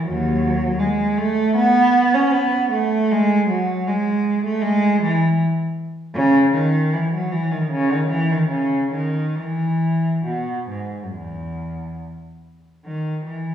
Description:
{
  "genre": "classical, baroque-style suite movement for unaccompanied cello",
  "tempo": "67-81 BPM",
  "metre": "4/4",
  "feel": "rubato",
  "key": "E major",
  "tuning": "A4 = 439 Hz",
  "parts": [
    { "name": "rich cello", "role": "solo", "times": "0.0-13.5 s", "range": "D#2 to C#4", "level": "-18 LUFS", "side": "right 1 dB", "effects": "none" }
  ],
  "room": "wet recital hall reverb, RT60 1.3 s",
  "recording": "recorded in a church or concert hall, studio ambience",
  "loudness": "-17 LUFS",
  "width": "side -9 dB against mid",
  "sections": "0.0-12.9 A section",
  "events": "none",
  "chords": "none"
}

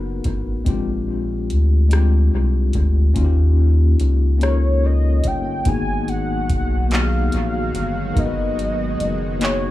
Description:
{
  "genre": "slow six-eight R&B",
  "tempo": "48 BPM (dotted quarters)",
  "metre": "6/8",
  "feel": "straight",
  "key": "G# dorian",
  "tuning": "A4 = 437 Hz",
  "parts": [
    { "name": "tine electric piano", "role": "accompaniment", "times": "0.0-9.7 s", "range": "G#3 to G5", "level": "-24 LUFS", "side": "left 6 dB", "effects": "medium tremolo, dub echo" },
    { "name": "rubbery square bass", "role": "bass", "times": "0.0-9.7 s", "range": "F#1 to D#2", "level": "-18 LUFS", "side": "equal", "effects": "none" },
    { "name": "booming analog drum machine", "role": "drums", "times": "0.2-9.6 s", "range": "handclaps, hi-hat, kick drum, rim click", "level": "-24 LUFS", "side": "equal", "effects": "none" },
    { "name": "warm velvety synth lead", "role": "melody", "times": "4.4-9.7 s", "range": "C#5 to G#5", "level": "-25 LUFS", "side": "equal", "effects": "chorus, dub echo" },
    { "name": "lush unison pad", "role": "sustained chords", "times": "5.7-9.7 s", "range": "D#3 to F#4", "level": "-29 LUFS", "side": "right 2 dB", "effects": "chorus" }
  ],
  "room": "digital ambience",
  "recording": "echo-heavy mix, small room ambience",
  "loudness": "-16 LUFS",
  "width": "side -15 dB against mid",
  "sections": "0.0-5.7 A section; 5.7-9.7 B section",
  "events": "none",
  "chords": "0.0 G#m9; 0.7 A#13; 3.2 D#9; 5.7 G#m9"
}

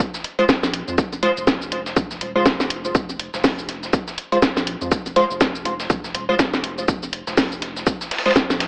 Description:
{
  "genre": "minimal techno",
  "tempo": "122 BPM",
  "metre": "4/4",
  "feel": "swing 59% on 16ths",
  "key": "F minor",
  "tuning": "A4 = 440 Hz",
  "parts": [
    { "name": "dusty soul sampler-style drum kit", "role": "drums", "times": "0.0-8.7 s", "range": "hi-hat, snare drum", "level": "-28 LUFS", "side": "equal", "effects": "overdrive, high-pass filter on snare, high-pass filter on hats" },
    { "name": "electronic kick drum", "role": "drums", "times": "0.0-8.5 s", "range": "none", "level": "-21 LUFS", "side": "equal", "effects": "overdrive" },
    { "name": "house drum kit", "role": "drums", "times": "0.0-8.7 s", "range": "hi-hat, shaker, snare drum", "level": "-21 LUFS", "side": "equal", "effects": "overdrive, analog delay" },
    { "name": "wavetable chord stab", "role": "stabs", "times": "0.4-8.3 s", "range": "Ab3 to C5", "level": "-21 LUFS", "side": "equal", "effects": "analog delay" },
    { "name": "saturated sub bass", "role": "bass", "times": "0.6-8.7 s", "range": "Eb1 to F2", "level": "-34 LUFS", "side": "equal", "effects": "sidechain pumping" }
  ],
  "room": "moderate spring reverb, RT60 1.2 s",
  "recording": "echo-heavy mix, AM radio sound",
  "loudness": "-18 LUFS",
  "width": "side -37 dB against mid",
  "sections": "0.0-8.7 A section",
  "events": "none",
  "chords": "none"
}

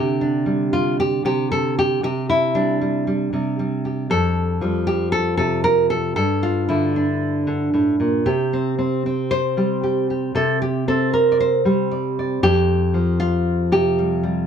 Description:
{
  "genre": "folk, solo fingerstyle acoustic guitar",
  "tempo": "116 BPM",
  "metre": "4/4",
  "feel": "straight",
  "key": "unclear",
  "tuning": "A4 = 440 Hz",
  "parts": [
    { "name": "nylon-string guitar", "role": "solo", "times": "0.0-14.5 s", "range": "F2 to D5", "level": "-17 LUFS", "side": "equal", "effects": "none" }
  ],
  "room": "little or no reverb",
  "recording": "close, detailed microphones",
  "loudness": "-17 LUFS",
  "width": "side -7 dB against mid",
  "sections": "0.0-14.5 A section",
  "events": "none",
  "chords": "0.0 Csus2; 4.1 Fsus2; 6.2 Gmadd9; 8.3 Csus2; 12.4 Fsus2"
}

